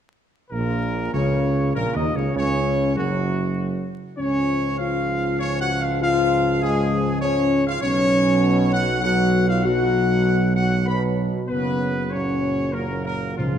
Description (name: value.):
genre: classical.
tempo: 98 BPM.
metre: 3/4.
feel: straight.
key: F# major.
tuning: A4 = 440 Hz.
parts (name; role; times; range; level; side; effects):
bright trumpet section; melody; 0.5-13.6 s; E#4 to B5; -26 LUFS; right 1 dB; none.
mellow French horn section; sustained chords; 0.5-13.6 s; E#3 to B4; -24 LUFS; left 3 dB; none.
mellow trombone section; sustained chords; 0.5-13.6 s; F#2 to G#3; -26 LUFS; right 2 dB; none.
mellow tuba; bass; 0.5-13.6 s; F#1 to D#2; -24 LUFS; right 2 dB; none.
timpani; percussion; 13.4-13.6 s; C#3; -24 LUFS; equal; none.
room: wet scoring stage reverb, RT60 1.7 s.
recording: dark, warm production, vinyl crackle.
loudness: -19 LUFS.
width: side -9 dB against mid.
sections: 0.5-13.6 A section.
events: timpani fill 13.4.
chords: 0.5 F#/A#; 4.2 C#; 7.8 Bsus2; 11.5 F#.